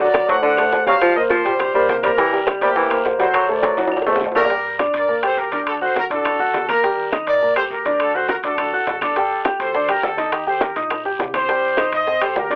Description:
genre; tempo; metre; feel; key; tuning
latin, salsa; 206 BPM; 4/4; straight; G minor; A4 = 440 Hz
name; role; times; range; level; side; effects
clear trumpet section; melody; 0.0-12.6 s; D4 to F#5; -23 LUFS; equal; none
breathy baritone saxophone; second line; 0.0-4.4 s; D3 to A3; -21 LUFS; equal; none
clear concert grand piano; accompaniment; 0.0-12.6 s; F#3 to G6; -23 LUFS; equal; none
upright bass; bass; 0.0-12.6 s; G1 to G2; -43 LUFS; equal; none
congas; percussion; 0.0-12.6 s; none; -30 LUFS; equal; none
bongos; percussion; 0.1-4.5, 9.2-12.5 s; none; -28 LUFS; equal; none
claves; percussion; 0.1-12.4 s; none; -38 LUFS; equal; none
guiro; percussion; 0.1-12.6 s; none; -39 LUFS; equal; none
timbales; percussion; 0.1-12.6 s; none; -28 LUFS; equal; none
room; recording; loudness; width
moderate booth ambience, RT60 0.2 s; telephone sound; -19 LUFS; mono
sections
0.0-4.5 A section; 4.5-12.6 B section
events
drum fill 3.6-4.5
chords
0.0 D7; 1.0 Eb6; 2.2 C7; 3.3 D7; 4.5 Gm; 5.7 D; 6.8 Eb; 8.0 D; 9.2 Gsus2; 10.3 Eb; 11.5 Cm

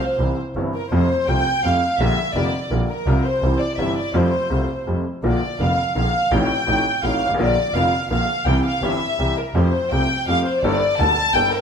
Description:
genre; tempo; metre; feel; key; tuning
tango; 167 BPM; 3/4; rubato; F major; A4 = 443 Hz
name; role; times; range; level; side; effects
dark studio violin section; second line; 0.0-11.6 s; Bb4 to A5; -21 LUFS; left 1 dB; none
clear upright piano; accompaniment; 0.2-11.5 s; F1 to A4; -23 LUFS; left 1 dB; none
clear double bass; bass; 0.2-11.5 s; F1 to F2; -23 LUFS; right 1 dB; none
room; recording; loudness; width
wet stone room reverb, RT60 1.3 s; band playing live in one room; -17 LUFS; side -7 dB against mid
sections
0.0-11.6 A section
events
violin section solo 0.0-11.6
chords
0.2 C; 0.9 F; 2.0 Bb6; 3.1 Csus4; 3.4 C; 4.1 Fadd9; 5.2 Bb; 6.3 F7/A; 7.4 Bb; 8.5 C; 9.5 Fadd9; 10.6 Gmadd9

